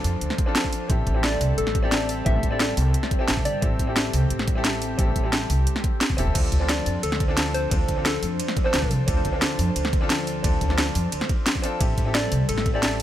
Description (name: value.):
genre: liquid drum and bass.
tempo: 176 BPM.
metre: 4/4.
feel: straight.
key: unclear.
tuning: A4 = 439 Hz.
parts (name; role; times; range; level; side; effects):
clear grand piano; accompaniment; 0.0-13.0 s; C4 to A4; -30 LUFS; left 1 dB; digital delay.
airy breathy pad; sustained chords; 0.0-13.0 s; F3 to C5; -32 LUFS; equal; chorus.
upright bass; bass; 0.0-13.0 s; E1 to F2; -25 LUFS; equal; none.
drum and bass drum kit; drums; 0.0-13.0 s; crash cymbal, hi-hat, ride cymbal, snare drum; -26 LUFS; equal; overdrive.
electronic kick drum; drums; 0.4-12.7 s; none; -24 LUFS; equal; overdrive.
soft struck synth lead; melody; 1.2-3.7, 6.7-8.9, 12.1-13.0 s; A4 to E5; -30 LUFS; left 1 dB; chorus, digital delay.
room: little or no reverb.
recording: none.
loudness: -20 LUFS.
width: side -12 dB against mid.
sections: 0.0-13.0 A section.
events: none.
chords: 0.0 Dm7; 0.9 Am7; 6.4 Dm7; 11.8 Am7.